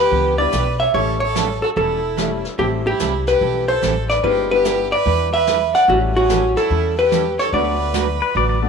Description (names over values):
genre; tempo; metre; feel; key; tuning
country, western swing; 146 BPM; 4/4; swing 66% on 8ths; unclear; A4 = 440 Hz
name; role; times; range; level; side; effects
vintage hollow-body jazz guitar; melody; 0.0-8.7 s; F#4 to F#5; -17 LUFS; left 1 dB; none
clear fiddle; second line; 0.0-8.7 s; C#4 to D5; -25 LUFS; right 7 dB; none
upright bass; bass; 0.0-8.7 s; E1 to E2; -24 LUFS; left 1 dB; none
picked steel-string acoustic guitar; accompaniment; 0.1-8.6 s; D3 to B4; -26 LUFS; right 12 dB; none
jazz brush drum kit; drums; 0.1-8.7 s; brushed snare drum, hi-hat, kick drum, snare drum; -30 LUFS; left 2 dB; none
clear upright piano; accompaniment; 0.4-8.7 s; G3 to F#4; -27 LUFS; left 12 dB; none
pedal steel guitar; second line; 8.2-8.7 s; B4 to D5; -19 LUFS; left 8 dB; none
room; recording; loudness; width
wet spring reverb, RT60 1.6 s; 1960s-style stereo with parts hard left and right; -15 LUFS; side -6 dB against mid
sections
0.0-8.7 A section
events
none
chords
0.0 Em7; 0.9 A7; 2.6 Am7; 4.2 Em7/G; 5.9 A7; 7.5 D6